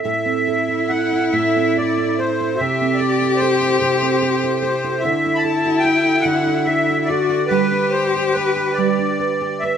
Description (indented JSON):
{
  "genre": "celtic folk, Celtic slow air",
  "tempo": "48 BPM (dotted quarters)",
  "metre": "6/8",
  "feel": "rubato",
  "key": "A dorian",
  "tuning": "A4 = 440 Hz",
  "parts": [
    { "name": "accordion", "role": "melody", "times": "0.0-9.8 s", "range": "B4 to B5", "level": "-20 LUFS", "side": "left 1 dB", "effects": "light tremolo tuning" },
    { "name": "rich cello", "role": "second line", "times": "0.0-9.6 s", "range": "E4 to G4", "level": "-20 LUFS", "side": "left 3 dB", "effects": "none" },
    { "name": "nylon-string guitar", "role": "accompaniment", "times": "0.0-9.8 s", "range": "A2 to B4", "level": "-21 LUFS", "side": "right 7 dB", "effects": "none" }
  ],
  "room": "moderate spring reverb, RT60 2.4 s",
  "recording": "minimal, uncompressed stereo recording",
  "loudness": "-16 LUFS",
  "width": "side -8 dB against mid",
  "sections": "0.0-9.8 A section",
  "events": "none",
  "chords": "0.0 Am; 2.6 C6; 5.0 Dadd9; 7.5 G"
}